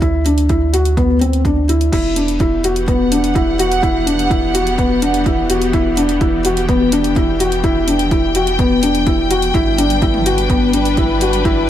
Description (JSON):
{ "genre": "piano and strings electronica", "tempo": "126 BPM", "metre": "4/4", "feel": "straight", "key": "E minor", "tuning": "A4 = 440 Hz", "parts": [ { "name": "felt-muted upright piano", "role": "riff", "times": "0.0-11.6 s", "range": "B3 to F#4", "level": "-15 LUFS", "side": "left 1 dB", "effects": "digital delay" }, { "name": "warm sub bass", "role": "bass", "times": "0.0-11.7 s", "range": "E1 to D2", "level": "-20 LUFS", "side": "right 1 dB", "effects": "sidechain pumping" }, { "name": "deep house drum kit", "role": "drums", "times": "0.0-11.5 s", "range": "crash cymbal, hi-hat, toms", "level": "-25 LUFS", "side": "equal", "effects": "none" }, { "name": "electronic kick drum", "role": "drums", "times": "0.0-11.5 s", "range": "none", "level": "-18 LUFS", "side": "right 1 dB", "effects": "none" }, { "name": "dark studio string section", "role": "sustained chords", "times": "1.9-11.7 s", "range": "E3 to G5", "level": "-20 LUFS", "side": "left 1 dB", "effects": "sidechain pumping" } ], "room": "moderate echo chamber reverb, RT60 2.4 s", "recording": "none", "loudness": "-12 LUFS", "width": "side -11 dB against mid", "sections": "0.0-11.7 A section", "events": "none", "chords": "0.0 N.C.; 1.9 Emadd9; 9.5 G" }